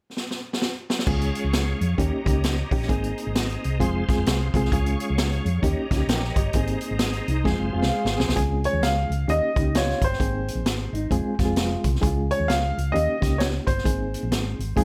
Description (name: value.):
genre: uptempo 1960s-style soul.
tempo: 131 BPM.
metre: 4/4.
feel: swing 62% on 8ths.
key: Db major.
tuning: A4 = 440 Hz.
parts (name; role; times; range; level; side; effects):
swinging big-band drum kit; drums; 0.2-14.8 s; crash cymbal, hi-hat, kick drum, snare drum; -28 LUFS; equal; none.
reed electric piano; accompaniment; 1.1-14.8 s; Ab3 to G5; -30 LUFS; equal; fast tremolo.
bright tonewheel organ; sustained chords; 1.1-8.4 s; G4 to Db6; -36 LUFS; equal; slow rotary speaker, overdrive, chorus vibrato.
hollow-body short-scale fingered electric bass; bass; 1.1-14.8 s; F1 to F2; -28 LUFS; equal; none.
mellow electric guitar; riff; 7.3-12.0, 14.8 s; Eb4 to Ab4; -34 LUFS; equal; phaser.
clear grand piano; melody; 8.7-14.8 s; C5 to F5; -29 LUFS; equal; none.
room: light reverb.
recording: none.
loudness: -24 LUFS.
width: mono.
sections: 0.0-1.1 A section; 1.1-8.4 B section; 8.4-14.8 C section.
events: drum fill 0.2-1.1, 7.5-8.4.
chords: 0.0 N.C.; 1.1 Db; 2.0 Eb7; 2.9 Abadd9; 3.8 Fm; 4.7 Db; 5.6 Eb7; 6.5 Abadd9; 7.5 Fm; 8.4 Db; 9.3 Eb7; 10.2 Abadd9; 11.1 Fm; 12.0 Db; 12.9 Eb7; 13.9 Abadd9.